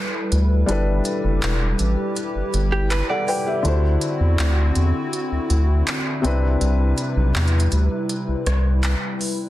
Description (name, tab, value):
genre	contemporary R&B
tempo	81 BPM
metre	4/4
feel	straight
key	G major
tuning	A4 = 440 Hz
part	felt-muted upright piano	accompaniment	0.0-9.5 s	C3 to G5	-26 LUFS	left 2 dB	none
part	hollow soft pad	sustained chords	0.0-9.5 s	C3 to B4	-26 LUFS	equal	chorus
part	round analog bass	bass	0.3-8.9 s	E1 to E2	-18 LUFS	equal	none
part	smooth R&B drum kit	drums	0.3-9.4 s	handclaps, hi-hat, rim click	-27 LUFS	equal	none
part	direct-recorded clean electric guitar	arpeggios	2.7-3.6 s	G4 to D5	-27 LUFS	right 4 dB	lush chorus, digital delay
room	light reverb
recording	dense, heavily limited modern master, lossy compression artefacts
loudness	-18 LUFS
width	side -15 dB against mid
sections	0.0-9.5 A section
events	break 0.0-9.5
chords	0.0 G69; 3.6 D9; 6.2 Cmaj7